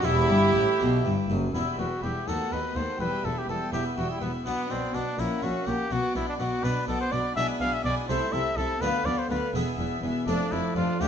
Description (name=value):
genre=classical, baroque-style concerto movement with solo episodes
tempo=82 BPM (dotted quarters)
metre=6/8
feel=straight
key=E minor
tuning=A4 = 440 Hz
part: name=clear trumpet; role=melody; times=0.0-11.1 s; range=B3 to F5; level=-30 LUFS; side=left 1 dB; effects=none
part: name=warm chamber violin section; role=melody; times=0.0-11.1 s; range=E5 to E6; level=-40 LUFS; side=left 4 dB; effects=none
part: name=warm chamber violin section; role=second line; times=0.0-11.1 s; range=E4 to G#5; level=-36 LUFS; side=right 1 dB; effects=none
part: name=dark chamber viola section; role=accompaniment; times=0.0-11.1 s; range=G3 to G4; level=-32 LUFS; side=right 2 dB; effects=none
part: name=harpsichord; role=accompaniment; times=0.0-11.1 s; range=D2 to F#4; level=-31 LUFS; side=left 1 dB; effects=none
part: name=rich chamber double bass section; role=bass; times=0.0-11.1 s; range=E1 to D#2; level=-32 LUFS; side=right 1 dB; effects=none
part: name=warm chamber cello section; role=bass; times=0.0-11.1 s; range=D2 to D3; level=-34 LUFS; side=equal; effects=none
room=wet stone room reverb, RT60 1.0 s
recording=nothing above 7.8 kHz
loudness=-24 LUFS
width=side -8 dB against mid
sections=0.0-1.5 A section; 1.5-11.1 B section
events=none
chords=0.0 Em; 2.3 B7/D#; 3.0 Em; 4.5 Bm; 5.2 F#7/A#; 5.9 Bm; 7.4 E7/B; 8.1 Am/C; 8.8 Bdim/D; 9.5 E; 10.3 Dm/F